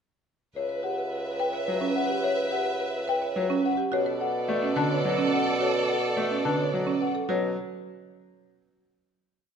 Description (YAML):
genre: classical, minimalist pattern music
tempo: 107 BPM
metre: 3/4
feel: straight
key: B minor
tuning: A4 = 440 Hz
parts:
  - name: folk marimba with medium mallets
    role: melody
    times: 0.6-7.6 s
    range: C#5 to A5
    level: -30 LUFS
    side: left 6 dB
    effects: none
  - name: mellow clarinet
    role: second line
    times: 0.6-7.1 s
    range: A4 to B4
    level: -36 LUFS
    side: right 2 dB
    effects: none
  - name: rich chamber violin section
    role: sustained chords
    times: 0.6-7.1 s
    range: A4 to E5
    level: -33 LUFS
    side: equal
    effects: none
  - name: warm bassoon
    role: bass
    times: 0.6-7.5 s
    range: C#2 to B2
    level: -31 LUFS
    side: right 1 dB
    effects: none
  - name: marimba with medium mallets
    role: arpeggios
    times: 0.7-7.5 s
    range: C#4 to C#5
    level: -30 LUFS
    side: right 6 dB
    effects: none
  - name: bright grand piano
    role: accompaniment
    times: 1.7-7.5 s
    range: D3 to A3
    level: -32 LUFS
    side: left 1 dB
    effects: none
room: wet recital hall reverb, RT60 1.7 s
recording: none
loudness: -24 LUFS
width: side -7 dB against mid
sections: 0.6-7.3 A section; 7.3-9.0 final chord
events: none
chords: 0.6 C#m7b5; 3.9 Bm7; 7.3 B5